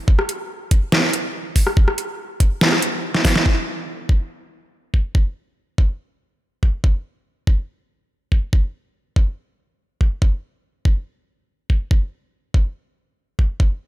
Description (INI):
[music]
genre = dubstep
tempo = 142 BPM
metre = 4/4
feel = half-time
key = none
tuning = none
[part]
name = electronic kick drum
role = drums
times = 0.1-13.7 s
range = none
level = -16 LUFS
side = equal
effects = none
[part]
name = dubstep drum kit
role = drums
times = 0.2-3.4 s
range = hi-hat, rim click, snare drum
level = -19 LUFS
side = equal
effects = none
[sound]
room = light reverb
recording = none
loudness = -18 LUFS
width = side -15 dB against mid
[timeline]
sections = 0.0-3.5 A section; 3.5-13.9 B section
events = drop 0.0-3.5; drum fill 3.1-3.5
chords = none